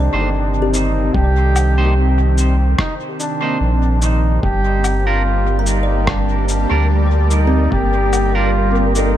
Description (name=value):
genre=ambient dub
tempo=73 BPM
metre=4/4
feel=swing 55% on 16ths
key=G minor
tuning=A4 = 439 Hz
part: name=clear trombone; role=melody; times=0.0-9.2 s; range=D4 to G4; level=-21 LUFS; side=equal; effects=dub echo
part: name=warm analog pad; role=sustained chords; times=0.0-9.2 s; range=C3 to D5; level=-23 LUFS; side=equal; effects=chorus
part: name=kalimba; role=arpeggios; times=0.0-9.2 s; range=C4 to Bb5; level=-27 LUFS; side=left 2 dB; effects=tape echo
part: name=warm sub bass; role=bass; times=0.0-9.2 s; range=G1 to D2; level=-16 LUFS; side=equal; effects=tube saturation
part: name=clean electric guitar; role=stabs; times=0.1-8.5 s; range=G3 to C5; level=-27 LUFS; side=right 3 dB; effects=dub echo
part: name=electronic cabasa, woodblock and rim click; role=drums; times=0.7-9.1 s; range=none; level=-27 LUFS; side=left 2 dB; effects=overdrive, dub echo
part: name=electronic kick drum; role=drums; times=1.1-7.9 s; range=none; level=-21 LUFS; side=equal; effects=overdrive
part: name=wind-like tuned noise texture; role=texture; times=5.0-9.2 s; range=Bb3 to Bb4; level=-24 LUFS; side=right 2 dB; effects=built-in reverb
room=light reverb, digital ambience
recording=echo-heavy mix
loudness=-13 LUFS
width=side -12 dB against mid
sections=0.0-9.2 A section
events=none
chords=0.0 Cm7; 4.4 Gm